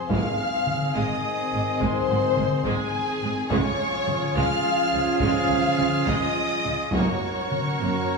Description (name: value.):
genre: cinematic, epic orchestral film score.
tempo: 70 BPM (dotted quarters).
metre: 12/8.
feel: straight.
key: unclear.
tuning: A4 = 441 Hz.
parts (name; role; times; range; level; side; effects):
warm symphonic violin section; melody; 0.0-8.2 s; Ab5 to F6; -31 LUFS; equal; none.
warm symphonic violin section; second line; 0.0-8.2 s; Ab4 to F5; -30 LUFS; left 2 dB; none.
rich symphonic viola section; accompaniment; 0.0-8.2 s; Gb3 to Gb4; -31 LUFS; right 1 dB; none.
dark French horn section; sustained chords; 0.0-8.2 s; Eb3 to Db4; -30 LUFS; equal; none.
warm trumpet; stabs; 0.0-8.2 s; Ab4 to Bb4; -31 LUFS; equal; none.
mellow hollow flute section; second line; 0.1-8.2 s; Ab4 to F5; -29 LUFS; left 2 dB; none.
dark symphonic double bass section; bass; 0.1-7.9 s; Gb1 to Db2; -32 LUFS; right 2 dB; none.
rich studio cello section; bass; 0.1-7.9 s; Gb2 to Db3; -31 LUFS; right 4 dB; none.
taiko ensemble; drums; 0.1-7.8 s; none; -29 LUFS; left 1 dB; none.
room: wet recital hall reverb, RT60 1.7 s.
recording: studio ambience.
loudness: -21 LUFS.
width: side -3 dB against mid.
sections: 0.0-8.2 A section.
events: none.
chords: 0.1 Ab; 3.5 Db; 6.9 Gb.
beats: | 0.10 0.96 1.81 2.66 | 3.52 4.37 5.22 6.08 | 6.94 7.81.